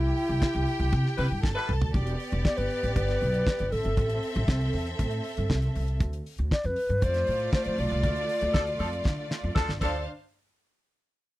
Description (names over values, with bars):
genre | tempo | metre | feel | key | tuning
disco | 118 BPM | 4/4 | straight | D dorian | A4 = 443 Hz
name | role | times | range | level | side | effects
bright reedy wooden-headed alto flute | melody | 0.0-10.0 s | E4 to D5 | -30 LUFS | left 1 dB | none
clear symphonic string section | second line | 0.0-10.0 s | A3 to A5 | -33 LUFS | right 1 dB | slapback echo
upright bass | bass | 0.0-10.0 s | E1 to D3 | -28 LUFS | equal | none
damped 70s drum kit | drums | 0.2-9.9 s | crash cymbal, hi-hat, kick drum, snare drum, toms | -27 LUFS | equal | none
clear horn section | stabs | 1.2-1.7, 8.5-10.0 s | F3 to B4 | -31 LUFS | left 2 dB | none
room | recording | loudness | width
little or no reverb | dry, close 1970s-style studio recording | -25 LUFS | side -17 dB against mid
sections
0.0-1.9 A section; 1.9-10.1 B section; 10.1-11.4 C section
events
drum fill 1.4-1.9, 9.0-10.1; band accent 8.0-10.1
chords
0.0 C; 1.9 Em7; 3.7 Am; 6.0 Dm7; 10.1 N.C.